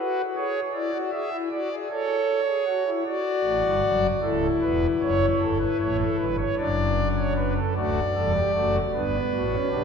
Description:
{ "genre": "classical, baroque-style 4-part fugue for pipe organ", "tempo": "51 BPM (dotted quarters)", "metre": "6/8", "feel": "straight", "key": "D major", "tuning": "A4 = 444 Hz", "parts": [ { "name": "pipe organ, foundations", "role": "solo", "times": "0.0-9.8 s", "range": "C#1 to E5", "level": "-22 LUFS", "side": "equal", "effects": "none" } ], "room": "wet church reverb, RT60 3.4 s", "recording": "minimal, uncompressed stereo recording", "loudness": "-22 LUFS", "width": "side -6 dB against mid", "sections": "0.0-7.8 A section; 7.8-9.8 B section", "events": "none", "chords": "0.0 E (rootless); 0.8 E7; 1.9 A; 3.1 D; 4.2 A/C#; 5.4 A7/G; 6.6 D/F#; 7.8 D; 8.9 Gmaj7" }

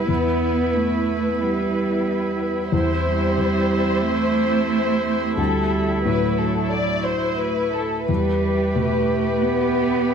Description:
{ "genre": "neoclassical piano and strings", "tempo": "90 BPM", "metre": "4/4", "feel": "rubato", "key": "E minor", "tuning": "A4 = 439 Hz", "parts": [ { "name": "muted studio violin section", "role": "melody", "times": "0.0-10.1 s", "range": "A4 to D5", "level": "-24 LUFS", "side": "left 3 dB", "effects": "none" }, { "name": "muted cello", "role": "second line", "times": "0.0-10.1 s", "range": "F#3 to B3", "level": "-23 LUFS", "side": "right 5 dB", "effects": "none" }, { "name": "felt-muted upright piano", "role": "accompaniment", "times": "0.0-10.1 s", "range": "D2 to B3", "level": "-26 LUFS", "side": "left 3 dB", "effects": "none" }, { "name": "muted viola", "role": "accompaniment", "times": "0.0-10.1 s", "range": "E4 to G4", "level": "-28 LUFS", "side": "right 3 dB", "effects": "none" }, { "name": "warbly tape-like pad", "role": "sustained chords", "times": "0.0-10.1 s", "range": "A3 to E5", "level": "-30 LUFS", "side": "right 1 dB", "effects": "chorus, built-in reverb" } ], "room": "moderate recital hall reverb, RT60 1.9 s", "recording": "dark, warm production", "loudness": "-18 LUFS", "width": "side -7 dB against mid", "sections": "0.0-10.1 A section", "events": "none", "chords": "0.0 Em; 2.7 Am7/E; 5.4 Dadd9; 8.1 Em" }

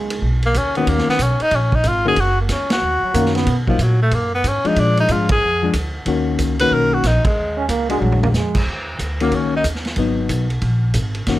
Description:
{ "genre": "jazz, small-group swing and bop", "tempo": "185 BPM", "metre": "4/4", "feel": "swing 64% on 8ths", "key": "Eb minor", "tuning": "A4 = 440 Hz", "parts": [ { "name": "clear trombone", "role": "second line", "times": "0.0-0.3, 3.0-3.6, 7.6-8.6 s", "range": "Gb3 to Db4", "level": "-23 LUFS", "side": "right 5 dB", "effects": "none" }, { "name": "upright bass", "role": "bass", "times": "0.0-11.4 s", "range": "Gb1 to B2", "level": "-20 LUFS", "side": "equal", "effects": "none" }, { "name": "vintage drum kit", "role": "drums", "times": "0.1-11.4 s", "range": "crash cymbal, hi-hat, kick drum, ride cymbal, snare drum, toms", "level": "-24 LUFS", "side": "right 1 dB", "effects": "none" }, { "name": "clear tenor saxophone", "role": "melody", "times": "0.5-9.7 s", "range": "F3 to Cb5", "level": "-18 LUFS", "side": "equal", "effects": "none" }, { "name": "hollow-body jazz guitar", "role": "accompaniment", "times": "0.8-11.4 s", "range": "Eb3 to Gb4", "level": "-21 LUFS", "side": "left 4 dB", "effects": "none" } ], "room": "light reverb", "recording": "close, detailed microphones", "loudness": "-15 LUFS", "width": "side -15 dB against mid", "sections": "0.0-8.7 A section; 8.7-11.4 A section", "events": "band accent 2.7, 5.3, 7.2; drum fill 8.0-8.3", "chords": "0.0 Abm; 0.9 Ebm7; 3.5 Bmaj7(no3); 4.8 Bb7; 6.1 Ebm7; 8.0 Bb7b13; 8.7 Ebm7; 10.0 Abm7" }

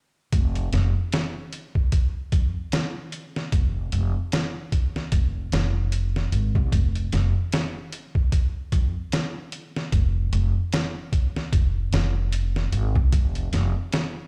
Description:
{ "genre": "trip hop", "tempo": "75 BPM", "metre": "4/4", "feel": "swing 57% on 16ths", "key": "F minor", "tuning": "A4 = 439 Hz", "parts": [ { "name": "upright bass", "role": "bass", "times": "0.3-13.7 s", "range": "F1 to F2", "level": "-26 LUFS", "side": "equal", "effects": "tube saturation" }, { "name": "trip hop sampler-style drum kit", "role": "drums", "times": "0.3-14.1 s", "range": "hi-hat, kick drum, snare drum", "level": "-26 LUFS", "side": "equal", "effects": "studio reverb" } ], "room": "little or no reverb", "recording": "played on a big sound system in a bare room, stone room reverb", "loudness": "-24 LUFS", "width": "mono", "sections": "0.3-14.3 A section", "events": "stop 0.0-0.3", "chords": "none" }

